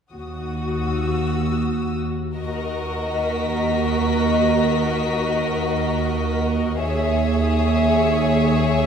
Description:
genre	cinematic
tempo	82 BPM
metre	3/4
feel	straight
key	Eb phrygian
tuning	A4 = 440 Hz
part	dark studio violin section	melody	0.1-8.9 s	Gb4 to Fb5	-25 LUFS	left 3 dB	none
part	dark symphonic double bass section	bass	0.1-8.9 s	Eb2	-24 LUFS	equal	none
part	warm symphonic cello section	bass	0.1-8.9 s	Eb2	-24 LUFS	right 5 dB	none
part	warm symphonic violin section	texture	0.1-8.9 s	Ab5 to Cb7	-34 LUFS	left 5 dB	none
part	warm symphonic violin section	second line	2.4-8.9 s	Gb4 to Db5	-24 LUFS	left 1 dB	none
room	wet concert hall reverb, RT60 2.3 s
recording	heard from further back in the room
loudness	-19 LUFS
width	side -7 dB against mid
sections	0.1-2.4 A section; 2.4-8.9 B section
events	none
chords	0.1 Ebm

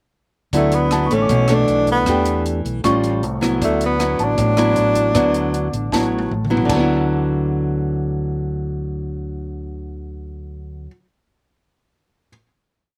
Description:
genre	bossa nova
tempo	156 BPM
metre	4/4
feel	straight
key	D major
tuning	A4 = 440 Hz
part	nylon-string guitar	accompaniment	0.5-11.0 s	A2 to G4	-22 LUFS	equal	none
part	fingered electric bass	bass	0.5-10.9 s	A1 to E2	-25 LUFS	equal	none
part	compact cocktail drum kit	drums	0.5-6.8 s	crash cymbal, hi-hat, kick drum, rim click, snare drum, toms	-30 LUFS	equal	none
part	breathy tenor saxophone	melody	0.6-6.3 s	A3 to D4	-22 LUFS	equal	none
part	dark baby grand piano	accompaniment	0.9-12.3 s	A5 to D6	-30 LUFS	equal	none
room	little or no reverb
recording	recorded outdoors, with no room sound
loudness	-18 LUFS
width	mono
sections	0.5-6.7 A section; 6.7-9.8 final chord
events	drum fill 5.9-6.7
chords	0.5 D69; 1.3 Bm11; 2.1 Em7; 2.8 A7alt; 3.6 D69

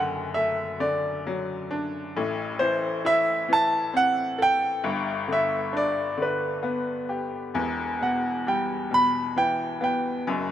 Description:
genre	pop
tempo	44 BPM (dotted quarters)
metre	6/8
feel	straight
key	E minor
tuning	A4 = 441 Hz
part	bright upright piano	accompaniment	0.0-10.5 s	E1 to A4	-28 LUFS	left 3 dB	none
part	clear concert grand piano	melody	0.3-10.3 s	B4 to B5	-24 LUFS	right 1 dB	none
room	moderate lush hall reverb, RT60 2.7 s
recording	rough home demo mix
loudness	-23 LUFS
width	side -11 dB against mid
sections	0.0-10.5 A section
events	none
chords	0.0 D/F#; 2.2 Am; 4.8 G; 7.6 Em

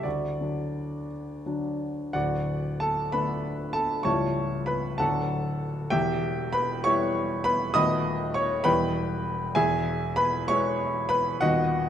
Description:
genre	classical, romantic character piece for solo piano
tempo	56-68 BPM (dotted quarters)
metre	6/8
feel	rubato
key	D major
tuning	A4 = 440 Hz
part	clear grand piano	solo	0.0-11.9 s	C#1 to D#6	-24 LUFS	equal	none
room	moderate scoring stage reverb, RT60 1.6 s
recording	none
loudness	-24 LUFS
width	side -9 dB against mid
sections	0.0-2.1 A section; 2.1-11.9 B section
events	none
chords	0.0 D; 4.1 A7/C#; 5.0 D; 5.9 Em; 7.8 B7/D#; 8.7 Em; 9.6 E

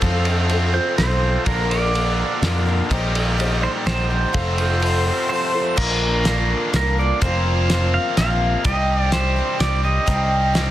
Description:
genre	folk rock and heartland rock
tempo	125 BPM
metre	3/4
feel	straight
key	unclear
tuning	A4 = 441 Hz
part	picked twelve-string acoustic guitar	accompaniment	0.0-10.7 s	Bb2 to C5	-26 LUFS	left 3 dB	none
part	biting overdriven guitar	riff	0.0-10.7 s	F2 to G4	-25 LUFS	equal	none
part	picked electric bass	bass	0.0-10.7 s	F1 to F2	-21 LUFS	equal	none
part	cloth-damped thuddy drum kit	drums	0.0-10.7 s	crash cymbal, hi-hat, kick drum, ride cymbal, snare drum	-24 LUFS	equal	none
part	pedal steel guitar	melody	0.7-10.7 s	Bb4 to F5	-24 LUFS	right 3 dB	analog delay
part	clear harmonica	second line	4.9-5.7 s	C5	-27 LUFS	left 3 dB	none
room	light reverb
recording	dense, heavily limited modern master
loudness	-17 LUFS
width	side -13 dB against mid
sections	0.0-5.8 A section; 5.8-10.7 B section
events	none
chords	0.0 F; 1.5 Bb; 2.9 Eb6/Bb; 4.3 F; 5.8 Bb; 7.2 Fsus4; 8.6 Cmadd9

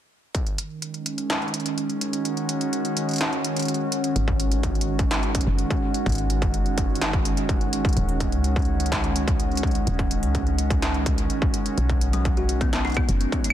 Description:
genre	IDM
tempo	126 BPM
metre	4/4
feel	straight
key	G# minor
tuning	A4 = 440 Hz
part	warbly tape-like pad	sustained chords	0.7-13.5 s	D#3 to F#4	-26 LUFS	right 1 dB	chorus, built-in reverb
part	electronic kick drum	drums	0.3-0.4, 4.3-13.4 s	none	-25 LUFS	equal	distortion
part	industrial drum kit	drums	0.3-13.5 s	claves, hi-hat, snare drum	-28 LUFS	equal	tape echo
part	woody FM bass	bass	4.2-13.3 s	D#1 to C#2	-25 LUFS	equal	none
part	kalimba	arpeggios	12.1-13.1 s	F#3 to F#4	-28 LUFS	left 4 dB	tape echo
room	light reverb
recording	dense, heavily limited modern master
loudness	-21 LUFS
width	side -11 dB against mid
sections	0.3-4.2 A section; 4.2-13.5 B section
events	kick drops out 2.3-4.2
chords	0.3 G#5; 8.0 D#m7; 11.8 Badd9

